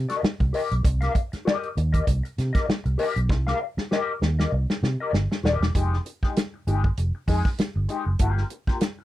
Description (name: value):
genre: funk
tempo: 98 BPM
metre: 4/4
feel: swing 56% on 16ths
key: C minor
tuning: A4 = 440 Hz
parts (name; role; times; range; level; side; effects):
- vintage muted fingered electric bass; bass; 0.0-8.7 s; Eb1 to C3; -24 LUFS; equal; none
- mellow electric guitar; accompaniment; 0.1-9.0 s; Ab3 to F5; -28 LUFS; left 4 dB; wah
- warm soul drum kit; drums; 0.1-9.0 s; hi-hat, kick drum, snare drum; -25 LUFS; equal; none
room: little or no reverb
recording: none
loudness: -22 LUFS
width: side -15 dB against mid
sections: 0.0-5.8 A section; 5.8-9.0 B section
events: drum fill 3.3-5.8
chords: 0.0 Cm7; 5.8 Fm9; 8.2 Gm7